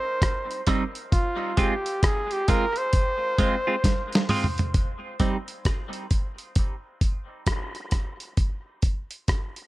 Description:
dub reggae; 66 BPM; 4/4; swing 62% on 16ths; C minor; A4 = 440 Hz
warm flugelhorn; melody; 0.0-4.3 s; F4 to C5; -28 LUFS; equal; dub echo
dusty soul sampler-style drum kit; drums; 0.2-9.7 s; hi-hat, kick drum, rim click, snare drum, toms; -23 LUFS; equal
clean electric guitar; accompaniment; 0.7-5.4 s; G3 to F4; -29 LUFS; right 2 dB; phaser, high-pass filter, dub echo
light reverb; -23 LUFS; side -18 dB against mid
0.0-4.7 A section; 4.7-9.7 B section
drum fill 3.8-4.7; break 4.7-9.7
0.0 Cm; 1.1 Fm; 4.7 Cm; 8.4 N.C.

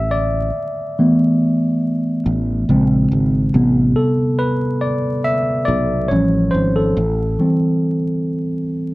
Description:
lo-fi hip hop; 70 BPM; 4/4; swing 59% on 16ths; A4 = 438 Hz
tine electric piano; accompaniment; 0.0-8.9 s; C3 to E5; -16 LUFS; equal
sustaining fretless electric bass; bass; 0.0-7.4 s; Ab1 to B1; -20 LUFS; equal; wide subtle chorus
wet studio reverb, RT60 0.5 s; dark, warm production, vinyl crackle; -15 LUFS; side -20 dB against mid
0.0-8.9 A section
tine electric piano solo 0.0-8.9
0.0 Asus24; 2.7 Bbm9; 3.5 Am9; 6.1 Aaug7; 7.0 Am7

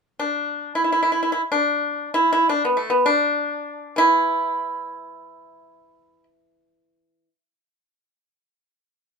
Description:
chinese traditional, Chinese solo plucked strings; free time; A4 = 440 Hz
pipa; solo; 0.2-7.3 s; E3 to E4; -19 LUFS; equal
moderate studio reverb, RT60 0.6 s; band playing live in one room; -18 LUFS; side -5 dB against mid
0.0-8.0 A section; 8.0-9.2 B section

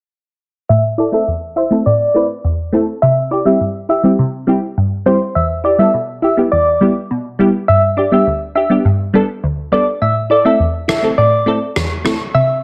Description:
dancehall; 103 BPM; 4/4; straight; A minor; A4 = 439 Hz
soft struck synth lead; melody; 0.7-12.5 s; C5 to E5; -17 LUFS; equal; chorus, low-pass filter
wavetable chord stab; accompaniment; 0.7-12.6 s; D2 to C5; -17 LUFS; equal; low-pass filter
rim click; drums; 10.9-12.2 s; -23 LUFS; equal
light reverb, small room ambience; -15 LUFS; mono
0.7-12.6 A section
filter sweep 0.7-12.6
0.7 Am; 3.0 C; 5.4 Em; 7.7 G; 10.0 Am

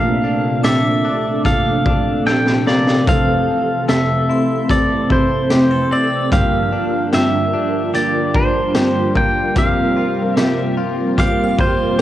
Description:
dream pop; 74 BPM; 4/4; straight; F major; A4 = 440 Hz
pedal steel guitar; melody; 0.0-12.0 s; C5 to G5; -19 LUFS; equal; cassette tape, analog delay
clean electric guitar; accompaniment; 0.0-12.0 s; F2 to G4; -22 LUFS; right 4 dB; tremolo, ensemble chorus
string machine, cellos; sustained chords; 0.0-12.0 s; Bb2 to Bb4; -20 LUFS; equal; ensemble chorus
direct-recorded clean electric guitar; arpeggios; 0.0-12.0 s; G2 to A4; -25 LUFS; left 7 dB; wide subtle chorus, analog delay
raw garage drum kit; drums; 0.6-12.0 s; hi-hat, kick drum, snare drum, tambourine; -18 LUFS; equal; cassette tape
shimmering bell with halo; texture; 0.6-12.0 s; C6 to F6; -32 LUFS; right 1 dB; ensemble chorus, phaser, analog delay
light reverb, small room ambience; home recording on cassette; -14 LUFS; side -13 dB against mid
0.0-12.0 A section
drum fill 2.3-3.1
0.0 Bbmaj7; 3.1 Fmaj7; 6.3 Gm7; 9.6 C7sus4

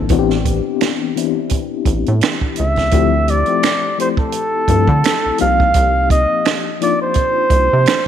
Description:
R&B, neo-soul; 85 BPM; 4/4; swing 55% on 16ths; A4 = 439 Hz
FM electric piano with tremolo; accompaniment; 0.0-8.1 s; E3 to A4; -20 LUFS; left 11 dB
rubbery square bass; bass; 0.0-7.9 s; A1 to D3; -16 LUFS; right 1 dB
compact cocktail drum kit; drums; 0.1-8.1 s; finger snaps, hi-hat, kick drum, snare drum; -18 LUFS; right 4 dB
breathy flugelhorn; melody; 2.6-8.1 s; A4 to F5; -16 LUFS; right 1 dB; tape echo
light reverb, studio reverb; 1960s-style stereo; -13 LUFS; side -9 dB against mid
0.0-8.1 A section
0.1 Am11; 2.9 Dm11; 5.4 Cm11

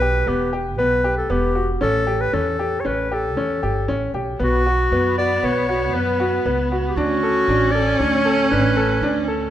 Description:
contemporary instrumental, chamber music in an uneven meter; 116 BPM; 5/4; straight; B minor; A4 = 440 Hz
bright clarinet; melody; 0.0-9.2 s; F#4 to D5; -21 LUFS; left 1 dB
bright baby grand piano; arpeggios; 0.0-9.5 s; B3 to A4; -23 LUFS; left 1 dB
upright bass; bass; 0.0-9.5 s; E1 to F#2; -24 LUFS; right 2 dB
clear viola; second line; 4.4-9.5 s; B3 to C#4; -23 LUFS; equal
moderate concert hall reverb, RT60 2.0 s; minimal, uncompressed stereo recording; -17 LUFS; side -11 dB against mid
0.0-9.5 A section
0.0 Em; 1.8 A7; 4.4 B5; 7.0 Dmaj7

